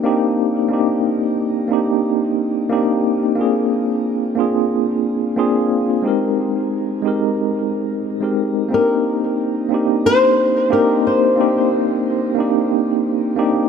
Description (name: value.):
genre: chillout.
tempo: 90 BPM.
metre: 4/4.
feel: straight.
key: C minor.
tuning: A4 = 439 Hz.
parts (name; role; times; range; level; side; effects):
tine electric piano; accompaniment; 0.0-13.7 s; Ab3 to Bb4; -16 LUFS; moving between left 4 dB and right 5 dB; fast stereo tremolo, auto-pan, shimmer reverb, tape echo.
flamenco guitar; melody; 8.7-11.7 s; Bb4 to C5; -18 LUFS; left 2 dB; shimmer reverb, tape echo.
room: moderate lush hall reverb, RT60 1.8 s, small room ambience.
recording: none.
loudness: -15 LUFS.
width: side -6 dB against mid.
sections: 0.0-13.7 A section.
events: none.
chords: 0.0 Cm7; 3.4 Bb7; 6.1 Abmaj7; 8.7 Cm7.